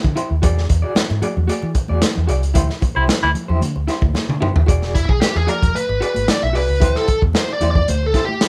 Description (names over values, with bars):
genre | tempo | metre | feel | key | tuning
funk | 113 BPM | 4/4 | straight | unclear | A4 = 439 Hz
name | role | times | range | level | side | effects
electric guitar through a small old amp | accompaniment | 0.0-8.5 s | E4 to D5 | -28 LUFS | equal | tremolo
vintage muted fingered electric bass | bass | 0.0-8.1 s | E1 to E3 | -21 LUFS | equal | none
crunchy breakbeat drum kit | drums | 0.0-8.5 s | hi-hat, kick drum, snare drum, toms | -21 LUFS | equal | none
congas | percussion | 0.0-8.5 s | none | -31 LUFS | equal | none
clear baritone saxophone | second line | 3.0-3.3 s | E4 | -20 LUFS | equal | none
biting lead guitar | melody | 4.9-8.5 s | E4 to E5 | -22 LUFS | equal | overdrive
room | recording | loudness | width
little or no reverb | rough home demo mix | -18 LUFS | mono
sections
0.0-4.7 A section; 4.7-8.5 B section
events
band accent 2.6-4.7; drum fill 4.2-4.7; lead electric guitar solo 4.7-8.5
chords
0.4 E9; 2.6 D9sus4; 4.7 E9; 6.8 D9sus4